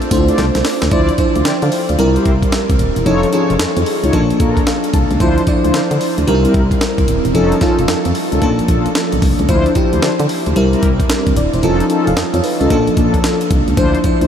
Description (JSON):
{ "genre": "R&B, new jack swing", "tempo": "112 BPM", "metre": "4/4", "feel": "swing 64% on 16ths", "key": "D minor", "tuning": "A4 = 439 Hz", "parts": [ { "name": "FM electric piano with soft pad layer", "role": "accompaniment", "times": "0.0-14.3 s", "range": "F3 to A5", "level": "-16 LUFS", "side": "equal", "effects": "chorus, shimmer reverb" }, { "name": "breakbeat sampler-style drum kit", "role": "drums", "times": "0.0-14.3 s", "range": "hi-hat, kick drum, snare drum, tambourine", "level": "-18 LUFS", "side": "equal", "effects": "none" }, { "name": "solid FM bass", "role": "bass", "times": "0.1-14.3 s", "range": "Eb1 to D3", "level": "-18 LUFS", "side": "equal", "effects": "none" }, { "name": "mellow synth brass", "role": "stabs", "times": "0.3-14.3 s", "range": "Bb3 to D5", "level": "-19 LUFS", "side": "left 2 dB", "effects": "chorus, ping-pong delay, shimmer reverb" } ], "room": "moderate huge ambient reverb, RT60 7.2 s", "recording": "dreamy mix soaked in reverb", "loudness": "-12 LUFS", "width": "side -8 dB against mid", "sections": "0.9-14.3 A section", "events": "drum fill 0.4-0.9; FM electric piano fill 4.4-5.2", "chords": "0.0 Dm7; 0.9 Dm9; 2.0 C7; 3.1 F7alt; 4.1 Bbmaj7; 5.2 Dm9; 6.3 C7; 7.3 Faug7; 8.4 Bbmaj7; 9.5 Dm9; 10.6 C7; 11.6 Faug7; 12.7 Bbmaj7", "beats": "0.38 | 0.92 1.45 1.99 2.52 | 3.06 3.60 4.13 4.67 | 5.20 5.74 6.27 6.81 | 7.35 7.88 8.42 8.95 | 9.49 10.02 10.56 11.10 | 11.63 12.17 12.70 13.24 | 13.77" }